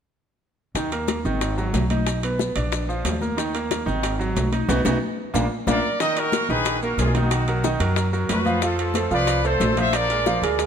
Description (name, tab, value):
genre	latin, salsa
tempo	183 BPM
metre	4/4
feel	straight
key	Eb harmonic minor, Eb minor from 6.0 s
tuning	A4 = 442 Hz
part	upright bass	bass	0.7-10.7 s	Ab1 to F#2	-25 LUFS	equal	none
part	bright concert grand piano	accompaniment	0.8-10.7 s	Eb3 to F5	-25 LUFS	right 3 dB	none
part	bongos	percussion	0.8-10.7 s	none	-31 LUFS	left 9 dB	none
part	congas	percussion	0.8-10.7 s	none	-30 LUFS	left 5 dB	none
part	maracas	percussion	0.8-10.7 s	none	-36 LUFS	left 10 dB	none
part	timbales	percussion	0.8-10.7 s	none	-31 LUFS	right 5 dB	none
part	bright trumpet section	melody	5.7-10.6 s	Eb4 to Fb5	-24 LUFS	left 1 dB	none
room	light reverb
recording	close, detailed microphones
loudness	-20 LUFS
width	side -8 dB against mid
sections	0.8-6.0 A section; 6.0-10.7 B section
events	band accent 4.7-6.0; drum fill 5.0-6.0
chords	0.8 Eb5; 1.4 Abm7; 2.1 B; 2.7 Bb; 3.4 Eb5; 4.0 Abm7; 4.7 B; 5.3 Bb; 6.0 Eb5; 7.3 Bmaj7; 8.6 F; 9.9 Bb7